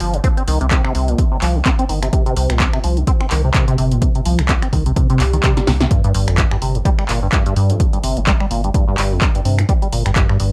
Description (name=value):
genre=acid house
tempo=127 BPM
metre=4/4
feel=swing 56% on 16ths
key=G minor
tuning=A4 = 440 Hz
part: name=liquid acid bass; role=riff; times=0.0-10.5 s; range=F2 to C4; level=-22 LUFS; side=equal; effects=phaser, analog chorus, sidechain pumping, cassette tape, tape echo
part: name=saturated sub bass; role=bass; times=0.0-10.5 s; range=G1 to G2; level=-21 LUFS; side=equal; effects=sidechain pumping
part: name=punchy analog drum machine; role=drums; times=0.0-10.5 s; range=finger snaps, handclaps, hi-hat, snare drum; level=-25 LUFS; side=equal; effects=overdrive, cassette tape
part: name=electronic kick drum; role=drums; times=0.2-10.3 s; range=none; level=-19 LUFS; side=equal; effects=overdrive, cassette tape
part: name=swell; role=sound effects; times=5.1-5.9 s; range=none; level=-27 LUFS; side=equal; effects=none
room=light reverb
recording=home recording on cassette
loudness=-16 LUFS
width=mono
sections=0.0-10.5 A section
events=filter sweep on acid bass 0.0-10.5; swell 5.1-5.9; drum fill 5.6-5.9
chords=none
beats=| 0.24 0.71 1.18 1.66 | 2.13 2.60 3.07 3.55 | 4.02 4.49 4.96 5.44 | 5.91 6.38 6.85 7.33 | 7.80 8.27 8.74 9.22 | 9.69 10.16